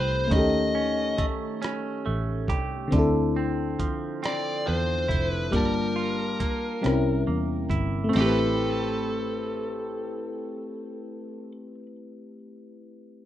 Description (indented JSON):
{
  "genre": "slow six-eight R&B",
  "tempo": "46 BPM (dotted quarters)",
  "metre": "6/8",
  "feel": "straight",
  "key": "A minor",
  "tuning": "A4 = 440 Hz",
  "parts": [
    { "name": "biting lead guitar", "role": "melody", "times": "0.0-11.5 s", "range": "A4 to D#5", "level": "-30 LUFS", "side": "left 2 dB", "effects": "overdrive, plate reverb" },
    { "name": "clean electric guitar", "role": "second line", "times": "0.0-11.9 s", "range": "C3 to B4", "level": "-33 LUFS", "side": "right 6 dB", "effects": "plate reverb" },
    { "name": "FM electric piano", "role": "accompaniment", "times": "0.0-13.3 s", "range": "D3 to A5", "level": "-28 LUFS", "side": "left 2 dB", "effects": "chorus, plate reverb" },
    { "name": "vintage muted fingered electric bass", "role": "bass", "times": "0.0-11.8 s", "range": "F1 to E2", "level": "-30 LUFS", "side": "right 1 dB", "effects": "none" },
    { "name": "dusty soul sampler-style drum kit", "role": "drums", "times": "0.3-8.4 s", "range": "crash cymbal, hi-hat, kick drum, rim click, snare drum", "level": "-30 LUFS", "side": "right 1 dB", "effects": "none" }
  ],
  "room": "moderate small room reverb, RT60 0.6 s",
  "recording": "rough home demo mix",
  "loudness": "-24 LUFS",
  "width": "side -12 dB against mid",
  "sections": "0.0-8.1 A section; 8.1-10.7 B section",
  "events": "none",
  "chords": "0.3 D#7#11; 2.9 Dm9; 5.5 Gm9; 6.8 C7b9; 8.1 Am9",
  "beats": "| 0.31 1.61 | 2.92 4.22 | 5.53 6.83 | 8.14 9.44"
}